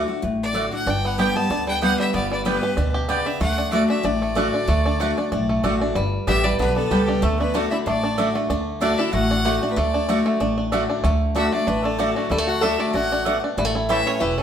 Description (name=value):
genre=bluegrass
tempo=189 BPM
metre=4/4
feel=swing 54% on 8ths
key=D major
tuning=A4 = 441 Hz
part: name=picked steel-string acoustic guitar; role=accompaniment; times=0.0-14.4 s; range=E2 to G4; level=-24 LUFS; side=left 2 dB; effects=none
part: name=upright bass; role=bass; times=0.0-14.4 s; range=E1 to D2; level=-26 LUFS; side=equal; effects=none
part: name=clear fiddle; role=melody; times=0.4-14.4 s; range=F#4 to A5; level=-26 LUFS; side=equal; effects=none
part: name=mandolin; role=stabs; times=0.5-14.0 s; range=A3 to A5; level=-27 LUFS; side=right 4 dB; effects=none
part: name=bluegrass banjo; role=arpeggios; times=0.9-14.4 s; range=G3 to G4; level=-24 LUFS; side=right 1 dB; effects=none
part: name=lap resonator guitar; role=second line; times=6.3-14.4 s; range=F#3 to A4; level=-28 LUFS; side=left 3 dB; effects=none
room=wet studio reverb, RT60 0.8 s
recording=band playing live in one room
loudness=-19 LUFS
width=side -8 dB against mid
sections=0.0-6.0 A section; 6.0-14.4 B section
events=none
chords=0.0 D; 0.9 G; 3.4 D; 6.0 G; 7.2 D; 13.6 A